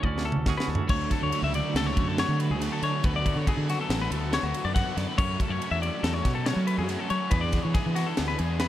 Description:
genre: math rock and midwest emo.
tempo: 140 BPM.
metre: 5/4.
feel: straight.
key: D lydian.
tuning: A4 = 444 Hz.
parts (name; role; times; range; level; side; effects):
twangy electric guitar; accompaniment; 0.0-3.0 s; D2 to G#4; -32 LUFS; right 8 dB; tremolo.
clean electric guitar; arpeggios; 0.0-8.7 s; F#4 to F#5; -31 LUFS; left 5 dB; spring reverb.
fuzz fingered electric bass; bass; 0.0-8.7 s; A1 to F#3; -29 LUFS; equal; overdrive.
crisp fusion drum kit; drums; 0.0-8.7 s; crash cymbal, kick drum, ride cymbal, snare drum, toms; -29 LUFS; equal; none.
raw garage guitar; riff; 0.9-8.7 s; D3 to G#4; -33 LUFS; right 1 dB; overdrive.
room: little or no reverb.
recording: dark, warm production.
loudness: -24 LUFS.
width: side -13 dB against mid.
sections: 0.9-8.7 A section.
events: drum fill 0.0-0.9.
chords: 0.0 Dmaj7#11; 0.9 Dmaj7; 3.0 Bm7; 5.2 F#m7; 7.3 E7.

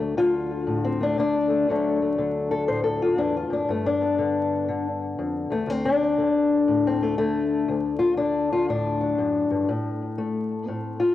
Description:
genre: acoustic country blues, solo or duo.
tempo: 120 BPM.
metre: 4/4.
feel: swing 64% on 8ths.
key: D mixolydian.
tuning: A4 = 438 Hz.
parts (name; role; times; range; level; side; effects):
fingerpicked old ladder-braced acoustic guitar; solo; 0.0-11.1 s; D2 to C5; -21 LUFS; left 3 dB; cassette tape, analog delay.
room: moderate lush hall reverb, RT60 2.5 s.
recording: home recording on cassette, vinyl crackle.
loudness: -21 LUFS.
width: side -13 dB against mid.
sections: 0.0-1.7 A section; 1.7-11.1 A section.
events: steel-string acoustic guitar solo 0.0-1.7, 1.7-11.1.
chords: 0.0 D; 3.7 G7; 5.7 D7; 9.7 Am.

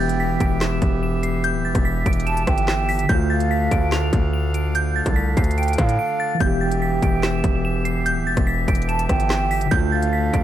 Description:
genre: hip hop, drill.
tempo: 145 BPM.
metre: 4/4.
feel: half-time.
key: E phrygian.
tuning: A4 = 440 Hz.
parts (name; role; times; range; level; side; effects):
glassy synth bell; melody; 0.0-10.4 s; G6 to F7; -27 LUFS; equal; chorus, phaser, analog delay.
breathy mellow concert flute; second line; 0.0-10.4 s; F5 to A5; -26 LUFS; right 4 dB; analog delay.
mellow tine electric piano; accompaniment; 0.0-10.4 s; D3 to G4; -25 LUFS; left 1 dB; medium stereo tremolo, analog delay.
accordion; sustained chords; 0.0-10.4 s; D3 to F5; -30 LUFS; right 2 dB; none.
distorted 808-style bass; bass; 0.0-10.4 s; D1 to A2; -23 LUFS; equal; distortion.
drill drum kit; drums; 0.1-10.4 s; handclaps, hi-hat, kick drum, rim click, snare drum; -22 LUFS; equal; none.
room: digital ambience.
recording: echo-heavy mix.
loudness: -18 LUFS.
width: side -12 dB against mid.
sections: 0.0-10.4 A section.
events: break 6.0-6.4.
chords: 0.0 Em; 3.1 Dm; 6.4 Em; 9.7 Dm.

